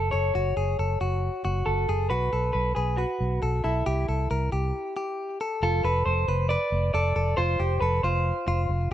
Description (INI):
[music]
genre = jangly indie pop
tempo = 137 BPM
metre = 4/4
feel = straight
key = unclear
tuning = A4 = 440 Hz
[part]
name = electric guitar through a small old amp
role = melody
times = 0.0-8.7 s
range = E4 to D5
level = -28 LUFS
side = right 1 dB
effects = plate reverb, digital delay
[part]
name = direct-recorded clean electric guitar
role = arpeggios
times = 0.0-8.9 s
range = F4 to B4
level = -30 LUFS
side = left 3 dB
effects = warbly pitch drift, plate reverb
[part]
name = vintage muted fingered electric bass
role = bass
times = 0.0-8.9 s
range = F1 to C2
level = -26 LUFS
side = equal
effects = none
[sound]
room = light reverb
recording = none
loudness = -24 LUFS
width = side -11 dB against mid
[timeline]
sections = 0.0-5.6 A section; 5.6-8.9 B section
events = break 4.7-5.6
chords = 0.0 F#madd9; 2.1 B5; 3.9 C7; 5.6 F